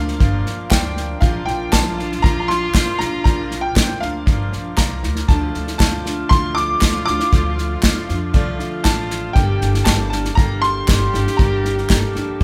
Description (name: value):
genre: indie folk with a building arrangement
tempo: 118 BPM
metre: 4/4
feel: straight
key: Bb major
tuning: A4 = 440 Hz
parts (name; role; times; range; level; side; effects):
- warm upright piano; melody; 0.0-12.4 s; F5 to D6; -26 LUFS; equal; none
- clear French horn; second line; 0.0-12.4 s; Bb3 to G4; -29 LUFS; equal; none
- bright grand piano; accompaniment; 0.0-12.4 s; G1 to F5; -36 LUFS; equal; none
- picked steel-string acoustic guitar; accompaniment; 0.0-12.4 s; G2 to A4; -31 LUFS; equal; none
- pedal harmonium; sustained chords; 0.0-12.4 s; F4 to F5; -36 LUFS; equal; none
- upright bass; bass; 0.0-12.4 s; G1 to F2; -26 LUFS; equal; none
- unplugged drum kit; drums; 0.1-12.4 s; kick drum, snare drum; -20 LUFS; equal; none
- group handclap; percussion; 0.7-12.0 s; none; -30 LUFS; equal; none
- tambourine; percussion; 0.7-12.0 s; none; barely audible; none; none
room: light reverb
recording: band playing live in one room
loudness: -18 LUFS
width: mono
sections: 0.0-12.4 A section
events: none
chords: 0.0 Bb; 5.3 Dm; 9.4 Gmadd9